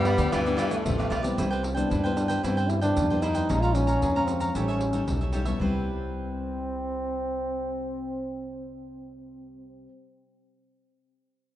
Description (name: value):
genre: samba and choro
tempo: 114 BPM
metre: 4/4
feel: straight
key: C major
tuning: A4 = 440 Hz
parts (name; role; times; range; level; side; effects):
- mellow trombone; melody; 0.0-9.9 s; G3 to F4; -29 LUFS; equal; slapback echo
- edgy tenor saxophone; second line; 0.0-1.4 s; C3 to G3; -31 LUFS; left 2 dB; none
- cavaquinho; accompaniment; 0.0-9.9 s; E4 to Bb5; -33 LUFS; right 3 dB; none
- nylon-string guitar; accompaniment; 0.0-9.9 s; F2 to E4; -33 LUFS; left 3 dB; none
- upright bass; bass; 0.0-9.9 s; A1 to G2; -30 LUFS; equal; none
- pandeiro, tamborim, egg shaker and surdo; percussion; 0.1-5.7 s; none; -33 LUFS; right 2 dB; none
room: moderate plate reverb, RT60 2.8 s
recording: rough home demo mix, nothing above 10.3 kHz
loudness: -24 LUFS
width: side -13 dB against mid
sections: 0.0-1.4 A section; 1.4-5.6 B section; 5.6-9.8 C section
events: none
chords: 0.0 G7; 1.4 Cmaj7; 3.5 Bbm7; 4.5 A7#11; 5.6 Cmaj7